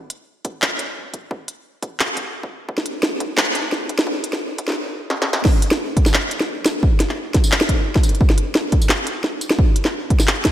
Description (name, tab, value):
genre	drum and bass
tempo	174 BPM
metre	4/4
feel	swing 54% on 16ths, half-time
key	none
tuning	none
part	industrial drum kit	drums	0.1-10.5 s	crash cymbal, handclaps, hi-hat, snare drum, tambourine	-19 LUFS	equal	none
part	electronic kick drum	drums	0.4-10.5 s	none	-17 LUFS	equal	high-pass filter on kick, high-pass filter on room
room	moderate lush hall reverb, RT60 1.7 s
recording	dreamy mix soaked in reverb, high-pass filter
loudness	-17 LUFS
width	side -12 dB against mid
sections	0.0-5.4 A section; 5.4-10.5 B section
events	build-up 0.0-5.4; filter sweep 0.0-5.4; drum fill 5.1-5.4; drop 5.4-10.5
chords	none